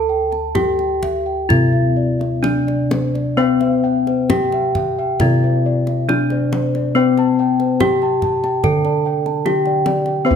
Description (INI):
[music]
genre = Javanese gamelan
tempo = 64-76 BPM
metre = 4/4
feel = straight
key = D slendro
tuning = A4 = 440 Hz
[part]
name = gamelan-type bronze metallophone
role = melody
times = 0.0-10.4 s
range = C4-40c to A4+20c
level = -18 LUFS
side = left 3 dB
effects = none
[part]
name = gamelan-type bronze metallophone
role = arpeggios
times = 0.0-10.4 s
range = C5-40c to A5+20c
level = -24 LUFS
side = right 4 dB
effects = none
[part]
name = gamelan-type bossed gongs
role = bass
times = 0.0-10.4 s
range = D2 to C5-40c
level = -20 LUFS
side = equal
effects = none
[part]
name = kendang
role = percussion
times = 0.3-10.2 s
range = none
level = -24 LUFS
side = left 2 dB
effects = none
[part]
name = gamelan-type bossed gongs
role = arpeggios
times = 3.4-10.4 s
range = C5-40c to A5+20c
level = -26 LUFS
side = left 4 dB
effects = none
[sound]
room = light reverb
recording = close, detailed microphones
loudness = -15 LUFS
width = side -7 dB against mid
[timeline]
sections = 0.0-10.3 A section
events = none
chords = none